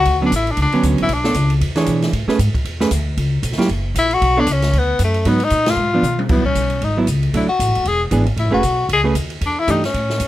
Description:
jazz, small-group swing and bop; 231 BPM; 4/4; swing 58% on 8ths; C# minor from 6.3 s; A4 = 441 Hz
clear tenor saxophone; melody; 0.0-1.5, 4.0-10.3 s; A3 to G#4; -18 LUFS; left 3 dB
upright bass; bass; 0.0-10.3 s; D1 to B2; -19 LUFS; equal
open jazz drum kit; drums; 0.1-10.3 s; crash cymbal, hi-hat, kick drum, ride cymbal, snare drum, toms; -24 LUFS; equal
hollow-body jazz guitar; accompaniment; 0.2-9.8 s; D3 to C#5; -18 LUFS; right 2 dB
little or no reverb; close, detailed microphones; -15 LUFS; side -14 dB against mid
0.0-6.3 A section; 6.3-10.3 B section
band accent 5.6; drum fill 6.0; tenor saxophone solo 6.3-10.3
0.1 D6; 1.1 Bm9; 1.6 E6; 2.1 Amaj9; 3.2 C#m7b5; 3.7 F#; 4.2 Bmadd9; 5.2 G#m7; 5.8 G#dim7; 6.3 C#m7; 7.3 Bm7; 7.9 E7; 8.4 Amaj9; 9.4 Em7

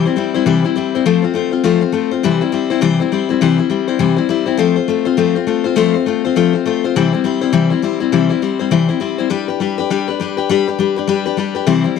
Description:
rock; 204 BPM; 4/4; swing 60% on 8ths; C major; A4 = 440 Hz
picked steel-string acoustic guitar; solo; 0.0-12.0 s; C3 to C5; -14 LUFS; left 8 dB
light reverb, small room ambience; -14 LUFS; side -6 dB against mid
0.0-12.0 A section
0.0 C; 1.1 F; 2.2 C; 4.6 F; 7.0 C; 9.3 G

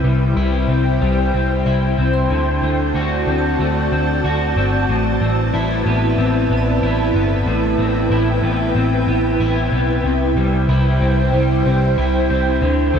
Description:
dream pop; 93 BPM; 4/4; straight; A4 = 440 Hz
ethereal airy pad; sustained chords; 0.0-13.0 s; E4 to A5; -21 LUFS; right 1 dB; ensemble chorus, built-in reverb
electric guitar at the edge of break-up; arpeggios; 0.0-13.0 s; A2 to F#4; -19 LUFS; left 2 dB; analog chorus, digital delay
vintage muted picked electric bass; bass; 0.0-13.0 s; G1 to D2; -19 LUFS; equal
vibraphone with hard mallets; texture; 2.1-9.2 s; E4 to C6; -32 LUFS; equal; digital delay
moderate shimmer reverb, RT60 4.5 s; dark, warm production; -15 LUFS; side -7 dB against mid
0.0-10.0 A section; 10.0-13.0 B section
0.0 C; 2.3 D7; 4.9 Amadd9; 10.0 C

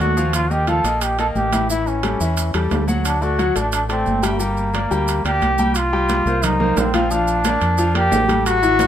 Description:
latin, salsa; 177 BPM; 4/4; straight; A4 = 437 Hz
brilliant trombone; melody; 0.0-8.9 s; Bb3 to A4; -20 LUFS; equal
bright grand piano; accompaniment; 0.0-8.9 s; E3 to G5; -22 LUFS; left 3 dB
deep dub fingered electric bass; bass; 0.0-8.9 s; G1 to F2; -22 LUFS; equal
congas; percussion; 0.0-8.9 s; -26 LUFS; equal
maracas; percussion; 0.0-8.9 s; -31 LUFS; right 5 dB
timbales; percussion; 0.0-8.9 s; -27 LUFS; right 7 dB
light reverb; minimal, uncompressed stereo recording; -16 LUFS; side -10 dB against mid
0.0-5.8 A section; 5.8-8.9 B section
0.3 Ebadd9; 1.7 A7; 3.0 D; 4.4 Gm; 5.8 Cm7; 7.1 Bb

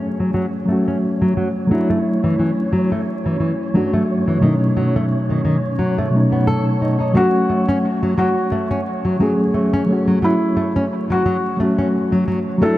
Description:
trip hop; 88 BPM; 4/4; swing 56% on 16ths; F# minor; A4 = 440 Hz
mellow reed electric piano; accompaniment; 0.0-12.8 s; B2 to G#4; -18 LUFS; equal; harmonic tremolo, tape echo
wind-like tuned noise texture; texture; 0.0-12.8 s; C#4 to C#5; -29 LUFS; right 1 dB; built-in reverb
nylon-string guitar; arpeggios; 0.2-12.8 s; D#3 to A4; -21 LUFS; left 1 dB; low-pass filter, tape echo
felt-muted upright piano; melody; 7.2-12.8 s; E4 to A4; -21 LUFS; equal; tape echo
moderate lush hall reverb, RT60 3.2 s; vinyl crackle; -16 LUFS; side -15 dB against mid
0.0-12.8 A section
0.0 F#m; 1.7 Dadd9; 4.4 B7; 7.2 F#m

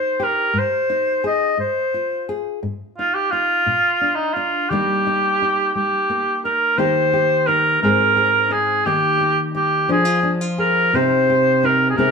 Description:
folk; 58 BPM (dotted quarters); 6/8; straight; Eb major; A4 = 440 Hz
warm cor anglais; melody; 0.0-12.1 s; Eb4 to Eb5; -17 LUFS; equal
nylon-string guitar; accompaniment; 0.0-12.1 s; G2 to Ab4; -22 LUFS; left 2 dB
wet studio reverb, RT60 0.9 s; band playing live in one room; -16 LUFS; side -5 dB against mid
0.0-6.8 A section; 6.8-12.1 B section
0.0 Cm/G; 0.5 Ab; 1.6 Fm/Ab; 2.6 Ab5; 3.7 Bb; 4.7 Eb; 7.8 Ab; 8.9 Eb; 9.9 Fm; 10.9 Cm

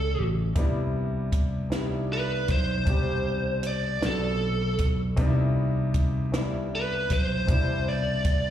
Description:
slow six-eight R&B; 52 BPM (dotted quarters); 6/8; straight; A4 = 441 Hz
biting lead guitar; melody; 0.0-8.5 s; A4 to D5; -29 LUFS; right 1 dB; overdrive, slapback echo
warm grand piano; accompaniment; 0.0-8.5 s; B2 to A4; -31 LUFS; left 2 dB; slapback echo
fingered electric bass; bass; 0.0-8.5 s; A1 to C#2; -28 LUFS; equal
compact cocktail drum kit; drums; 0.6-8.4 s; hi-hat, kick drum, snare drum; -26 LUFS; equal
small room ambience; live gig heard through the venue's PA, recital hall reverb, faint mains hum; -24 LUFS; side -10 dB against mid
0.0-8.5 A section
0.0 Dmaj7sus2; 0.6 Cmaj9

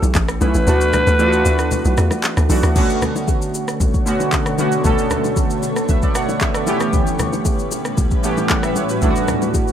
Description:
amapiano; 115 BPM; 4/4; straight; B minor; A4 = 444 Hz
raspy alto saxophone; melody; 0.0-2.2 s; B4; -20 LUFS; left 1 dB; plate reverb, digital delay
warm analog keys; accompaniment; 0.0-9.7 s; D3 to F#5; -20 LUFS; right 2 dB; chorus
tight log drum bass; bass; 0.0-2.8 s; A1 to E2; -16 LUFS; equal
afro-pop drum kit; drums; 0.0-9.7 s; crash cymbal, handclaps, hi-hat, kick drum, rim click, shaker; -20 LUFS; equal
bongos and congas; percussion; 0.0-9.7 s; -26 LUFS; left 2 dB
granular cloud pad; sustained chords; 3.5-9.7 s; D2 to C#5; -24 LUFS; left 1 dB; built-in reverb, sidechain pumping
light reverb; -15 LUFS; side -9 dB against mid
0.0-2.8 A section; 2.8-9.7 B section
drop 0.0-2.8; kick muted 0.7-2.8
0.0 A9; 0.7 D69; 2.8 Bm9; 6.7 A9; 9.0 D69

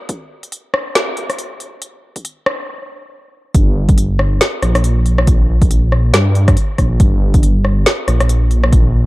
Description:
deep dubstep; 139 BPM; 4/4; swing 58% on 16ths, half-time; G minor; A4 = 440 Hz
deep house drum kit; drums; 0.1-8.8 s; hi-hat, rim click, snare drum; -18 LUFS; left 1 dB
electronic kick drum; drums; 0.1-8.8 s; -13 LUFS; equal; high-pass filter on kick
dark detuned saw bass; bass; 3.5-9.1 s; G1 to G2; -13 LUFS; equal
light reverb; dark, warm production; -12 LUFS; side -19 dB against mid
0.0-3.5 A section; 3.5-9.1 B section
build-up 0.0-3.5; stop 2.7-3.5; drop 3.5-9.1

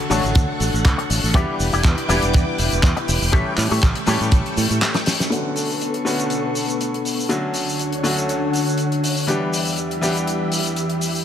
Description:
nu-disco, nu disco; 121 BPM; 4/4; swing 54% on 16ths; A4 = 441 Hz
bright grand piano; accompaniment; 0.0-11.2 s; D3 to C#5; -24 LUFS; left 2 dB; sidechain pumping, low-pass filter, dub echo
string machine, full ensemble; sustained chords; 0.0-11.2 s; D3 to D6; -24 LUFS; equal; ensemble chorus, sidechain pumping
electric guitar with an envelope filter; riff; 0.0-5.1 s; D4 to D5; -27 LUFS; left 4 dB; ensemble chorus, low-pass filter, dub echo
modern bright fingered electric bass; bass; 0.1-4.8 s; E1 to A2; -22 LUFS; right 1 dB
warm soul drum kit; drums; 0.1-11.2 s; handclaps, hi-hat, shaker, snare drum; -24 LUFS; left 1 dB
kick drum; drums; 0.4-4.4 s; -17 LUFS; right 1 dB
light reverb, small room ambience; -17 LUFS; side -9 dB against mid
0.0-5.3 A section; 5.3-11.2 B section
drum fill 4.8-5.3; band accent 5.2; filter sweep on grand piano 5.3-11.2; filter sweep on string machine 5.3-11.2
0.0 Dmaj7; 1.3 Em7; 3.3 A7; 5.3 Bm9; 7.3 Dmaj7; 9.3 Em7

